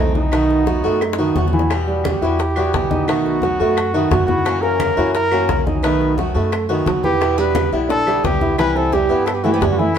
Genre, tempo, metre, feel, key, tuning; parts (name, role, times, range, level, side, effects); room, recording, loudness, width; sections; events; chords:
latin, Cuban son and guajira; 174 BPM; 4/4; straight; E harmonic minor; A4 = 438 Hz
warm trumpet; melody; 0.0-10.0 s; D#4 to B4; -21 LUFS; equal
picked swing-style acoustic guitar; accompaniment; 0.0-10.0 s; B2 to F#4; -23 LUFS; left 4 dB
warm grand piano; arpeggios; 0.0-10.0 s; D#3 to E5; -20 LUFS; right 3 dB
upright bass; bass; 0.0-10.0 s; B1 to G2; -23 LUFS; equal
bongos; percussion; 0.2-10.0 s; -27 LUFS; left 5 dB
congas; percussion; 0.2-10.0 s; -26 LUFS; left 2 dB
claves; percussion; 0.3-10.0 s; -34 LUFS; right 3 dB
flamenco guitar; second line; 7.0-10.0 s; A3 to E4; -24 LUFS; right 4 dB
moderate stone room reverb, RT60 1.1 s; band playing live in one room; -15 LUFS; side -8 dB against mid
0.0-1.7 A section; 1.7-10.0 A section
drum fill 1.0-1.7
0.3 B7; 1.7 Emadd9; 3.1 B7; 4.5 F#7; 5.8 B7; 7.2 Em7; 8.6 Cmaj7